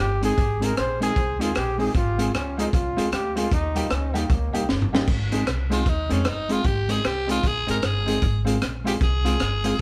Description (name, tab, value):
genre	ska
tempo	153 BPM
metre	4/4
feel	swing 62% on 8ths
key	Ab major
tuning	A4 = 442 Hz
part	clear trombone	melody	0.0-4.7 s	Bb3 to C5	-30 LUFS	equal	tape echo
part	upright bass	bass	0.0-9.7 s	G1 to F2	-29 LUFS	equal	none
part	mellow electric guitar	accompaniment	0.2-9.7 s	G3 to Ab4	-31 LUFS	equal	none
part	clear upright piano	stabs	0.2-9.8 s	Bb3 to Ab4	-34 LUFS	equal	none
part	crunchy breakbeat drum kit	drums	0.2-9.7 s	crash cymbal, hi-hat, kick drum, rim click, snare drum, toms	-28 LUFS	equal	none
part	raspy alto saxophone	melody	5.7-9.8 s	Db4 to Bb4	-29 LUFS	equal	none
room	light reverb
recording	band playing live in one room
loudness	-23 LUFS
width	mono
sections	0.0-5.1 A section; 5.1-9.8 A section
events	trombone solo 0.0-5.1; drum fill 4.7-5.1; alto saxophone solo 5.1-9.8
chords	0.0 Ab; 1.9 Fm/Ab; 3.5 Eb; 5.1 Ab; 8.2 Fm